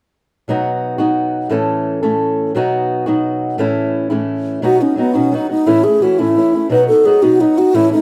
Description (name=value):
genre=celtic folk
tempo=116 BPM (dotted quarters)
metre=6/8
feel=straight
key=B mixolydian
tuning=A4 = 441 Hz
part: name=fingerpicked old ladder-braced acoustic guitar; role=accompaniment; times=0.5-8.0 s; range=A2 to A4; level=-18 LUFS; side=equal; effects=none
part: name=mellow wooden-headed alto flute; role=melody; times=4.6-8.0 s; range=B3 to B4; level=-14 LUFS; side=equal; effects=none
room=moderate studio reverb, RT60 0.5 s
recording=none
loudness=-15 LUFS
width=mono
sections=0.5-4.6 A section; 4.6-8.0 B section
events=none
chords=0.5 B; 1.5 A; 2.6 B; 3.6 A; 4.6 B; 5.7 A; 6.7 B